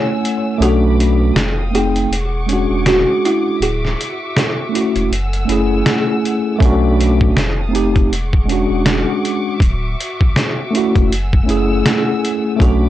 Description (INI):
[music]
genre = lo-fi hip hop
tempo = 80 BPM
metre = 4/4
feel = swing 60% on 16ths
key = unclear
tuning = A4 = 441 Hz
[part]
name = kalimba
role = melody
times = 0.0-5.1, 12.6-12.9 s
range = E4 to C#5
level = -20 LUFS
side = right 2 dB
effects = low-pass filter, analog delay
[part]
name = mellow tine electric piano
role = accompaniment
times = 0.0-12.9 s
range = G#3 to G#5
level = -16 LUFS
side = equal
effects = medium stereo tremolo, low-pass filter
[part]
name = warm studio string section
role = sustained chords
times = 0.0-12.9 s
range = A3 to E6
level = -26 LUFS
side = left 1 dB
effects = low-pass filter
[part]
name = trip hop sampler-style drum kit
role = drums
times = 0.3-12.8 s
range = hi-hat, kick drum, snare drum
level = -17 LUFS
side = equal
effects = vintage 12-bit sampler grit
[part]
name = saturated sub bass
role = bass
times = 0.6-12.9 s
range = D1 to B1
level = -18 LUFS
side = equal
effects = none
[sound]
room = light reverb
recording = dry, gritty hardware recording, cassette tape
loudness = -13 LUFS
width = side -13 dB against mid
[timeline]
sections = 0.0-12.9 A section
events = break 0.0-6.6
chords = 0.0 F#m9; 0.6 Bm9; 1.4 F9; 2.1 E13; 3.6 Dmaj9; 5.1 F#m9; 6.6 Bm9; 7.4 F9; 8.1 E13; 9.6 Dmaj9; 11.1 F#m9